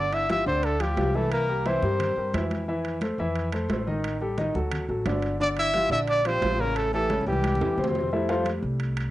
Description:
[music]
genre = Afro-Cuban jazz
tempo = 176 BPM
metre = 4/4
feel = straight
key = unclear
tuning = A4 = 439 Hz
[part]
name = warm trumpet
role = melody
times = 0.0-2.5, 5.4-7.9 s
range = G4 to E5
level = -26 LUFS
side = equal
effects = cassette tape
[part]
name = clear tenor saxophone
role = second line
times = 0.0-2.5, 5.4-7.9 s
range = G3 to E4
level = -35 LUFS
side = right 3 dB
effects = cassette tape, tape echo
[part]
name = warm grand piano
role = accompaniment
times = 0.0-9.1 s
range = C3 to F5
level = -28 LUFS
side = left 1 dB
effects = cassette tape
[part]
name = upright bass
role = bass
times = 0.0-9.1 s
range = G1 to G2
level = -30 LUFS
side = equal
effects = none
[part]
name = congas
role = percussion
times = 0.1-9.1 s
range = none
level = -36 LUFS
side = left 1 dB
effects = none
[part]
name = timbales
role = percussion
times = 0.1-9.1 s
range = none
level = -36 LUFS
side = right 5 dB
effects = none
[sound]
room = moderate studio reverb, RT60 0.6 s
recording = home recording on cassette, nothing above 10.7 kHz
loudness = -23 LUFS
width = side -15 dB against mid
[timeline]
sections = 0.0-8.1 A section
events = drum fill 7.1-8.1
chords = 0.0 G5; 1.3 C7; 2.7 Fmaj7; 4.0 Ebmaj7#11/A; 4.7 D; 5.4 Gm9; 6.8 A7; 7.4 C; 8.1 Fmaj9

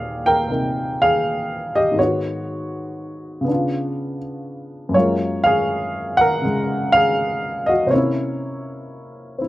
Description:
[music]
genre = solo jazz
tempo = 81 BPM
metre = 4/4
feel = swing 69% on 8ths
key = unclear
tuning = A4 = 440 Hz
[part]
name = dark baby grand piano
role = solo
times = 0.0-9.5 s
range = Eb2 to G5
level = -18 LUFS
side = equal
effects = none
[sound]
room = little or no reverb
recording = recorded outdoors, with no room sound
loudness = -17 LUFS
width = side -16 dB against mid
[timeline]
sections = 0.0-9.5 A section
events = none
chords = 0.0 Eb; 2.0 Abm7; 3.5 Db7b9; 4.9 Gbmaj9; 7.9 C7b9

